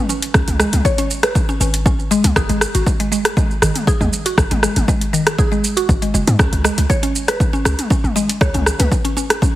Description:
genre	afro house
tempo	119 BPM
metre	4/4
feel	straight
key	unclear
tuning	A4 = 438 Hz
part	mallet-like synth pluck	arpeggios	0.0-9.5 s	D#3 to C#5	-21 LUFS	equal	chorus, phaser, sidechain pumping, tape echo
part	warm 808-style bass	bass	0.0-8.9 s	F#1 to G#2	-18 LUFS	equal	sidechain pumping
part	deep house drum kit	drums	0.1-9.5 s	hi-hat, rim click, shaker, toms	-19 LUFS	equal	overdrive, small room ambience
part	electronic kick drum	drums	0.3-9.5 s	none	-18 LUFS	equal	overdrive, small room ambience
room	light reverb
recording	heavily compressed radio sound, multiband compression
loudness	-14 LUFS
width	side -15 dB against mid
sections	0.0-9.6 A section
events	none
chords	0.0 C#5; 2.4 G#5; 6.4 C#5

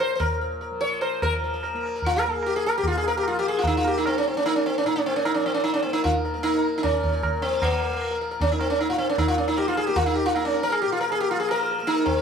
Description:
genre	indian classical, Hindustani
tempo	152 BPM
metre	4/4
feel	straight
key	Bb raga bhimpalasi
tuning	A4 = 440 Hz
part	sitar	melody	0.0-12.2 s	Bb3 to Db5	-22 LUFS	equal	plate reverb
part	tanpura	drone	0.0-12.2 s	Bb2 to Bb3	-32 LUFS	left 2 dB	none
part	tabla	percussion	0.2-12.2 s	none	-29 LUFS	right 1 dB	none
room	moderate studio reverb, RT60 0.5 s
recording	none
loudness	-21 LUFS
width	side -6 dB against mid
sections	0.0-1.2 A section; 1.2-12.2 B section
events	speeding up 0.0-12.2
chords	none

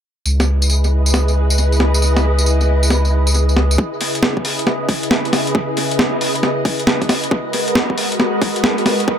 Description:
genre	UK garage, two-step garage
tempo	136 BPM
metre	4/4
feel	swing 65% on 16ths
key	C# dorian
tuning	A4 = 438 Hz
part	soft string machine	sustained chords	0.3-9.2 s	C#3 to D#5	-20 LUFS	equal	ensemble chorus, sidechain pumping
part	saturated sub bass	bass	0.3-3.8 s	C#2	-14 LUFS	equal	none
part	breakbeat sampler-style drum kit	drums	0.3-9.1 s	hi-hat, snare drum, tambourine	-18 LUFS	equal	dub echo
part	electronic kick drum	drums	3.8-9.2 s	none	-18 LUFS	equal	overdrive, high-pass filter on kick
room	moderate spring reverb, RT60 1.3 s, digital ambience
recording	echo-heavy mix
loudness	-14 LUFS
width	side -9 dB against mid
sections	0.3-3.8 A section; 3.8-9.2 B section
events	build-up 3.8-9.2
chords	0.3 C#m9; 7.3 G#m9

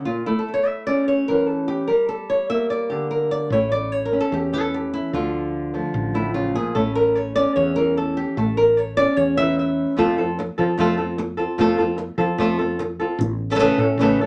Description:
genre	flamenco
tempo	148 BPM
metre	4/4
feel	straight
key	A phrygian dominant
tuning	A4 = 439 Hz
part	flamenco guitar	melody	0.0-14.3 s	A2 to E5	-22 LUFS	equal	none
part	woody fretless electric bass	bass	3.5-14.3 s	A1 to F3	-30 LUFS	equal	none
room	moderate studio ambience, RT60 0.5 s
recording	none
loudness	-21 LUFS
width	mono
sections	0.0-10.0 A section; 10.0-14.3 B section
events	nylon-string guitar solo 0.0-10.0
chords	0.3 A; 1.9 Gm; 3.5 A; 5.1 Dm; 6.8 A; 10.0 F; 13.2 A

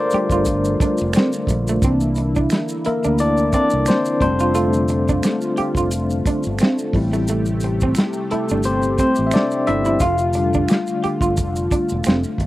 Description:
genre	R&B, neo-soul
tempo	88 BPM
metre	4/4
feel	swing 55% on 16ths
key	F major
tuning	A4 = 439 Hz
part	barky tine electric piano	accompaniment	0.0-12.5 s	E3 to F5	-20 LUFS	left 2 dB	medium tremolo
part	warm analog pad	sustained chords	0.0-12.5 s	C3 to G4	-26 LUFS	equal	chorus
part	electric guitar through a small old amp	second line	0.1-12.4 s	A3 to G4	-24 LUFS	right 4 dB	none
part	modern bright fingered electric bass	bass	0.1-12.5 s	E1 to D2	-23 LUFS	equal	none
part	warm soul drum kit	drums	0.1-12.5 s	hi-hat, kick drum, snare drum	-19 LUFS	equal	none
part	maracas and finger snaps	percussion	0.1-12.4 s	none	-32 LUFS	right 3 dB	none
room	little or no reverb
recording	recorded outdoors, with no room sound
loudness	-16 LUFS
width	side -16 dB against mid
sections	0.0-1.8 A section; 1.8-12.5 B section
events	tine electric piano solo 0.0-1.8, 1.8-12.5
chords	0.0 F6; 1.8 C9; 4.2 F6; 6.9 Am7; 10.0 F6

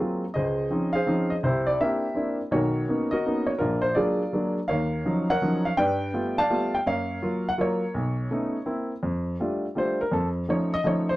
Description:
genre	jazz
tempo	166 BPM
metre	3/4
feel	swing 66% on 8ths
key	unclear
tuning	A4 = 440 Hz
part	warm upright piano	solo	0.0-11.2 s	Bb1 to A5	-23 LUFS	equal	none
room	light reverb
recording	dark, warm production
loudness	-23 LUFS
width	side -17 dB against mid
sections	0.3-9.0 A section; 9.0-11.2 B section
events	upright piano solo 9.0-11.2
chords	0.3 Dbmaj9; 1.4 C9; 2.5 Cbmaj9; 3.6 Bb7b13; 4.7 Ebm9; 5.8 G9; 6.9 Gbmaj7; 7.9 Cb9; 8.7 C7; 9.0 F69; 10.1 F7b13

